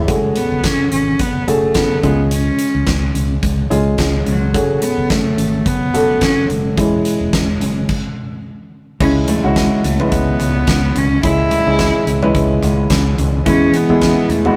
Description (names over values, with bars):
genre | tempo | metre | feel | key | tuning
piano-driven pop | 108 BPM | 4/4 | swing 56% on 16ths | unclear | A4 = 440 Hz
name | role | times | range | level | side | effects
warm baby grand piano | accompaniment | 0.0-14.6 s | C#3 to E5 | -20 LUFS | equal | none
fingered electric bass | bass | 0.0-14.5 s | E1 to E2 | -21 LUFS | equal | none
warm cello | melody | 0.1-14.6 s | F#3 to E4 | -21 LUFS | equal | none
huge arena drum kit | drums | 0.1-14.6 s | crash cymbal, hi-hat, kick drum, snare drum, toms | -22 LUFS | equal | none
fingerpicked steel-string acoustic guitar | riff | 13.5-14.6 s | E3 to G#4 | -24 LUFS | equal | none
room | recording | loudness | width
light reverb | rough rehearsal-room recording, tube saturation | -15 LUFS | mono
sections
0.0-9.0 A section; 9.0-14.6 B section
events
stop 7.9-9.0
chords
0.1 F#madd9; 2.0 C#; 4.5 F#madd9; 6.8 C#m/E; 9.0 C#m; 13.5 E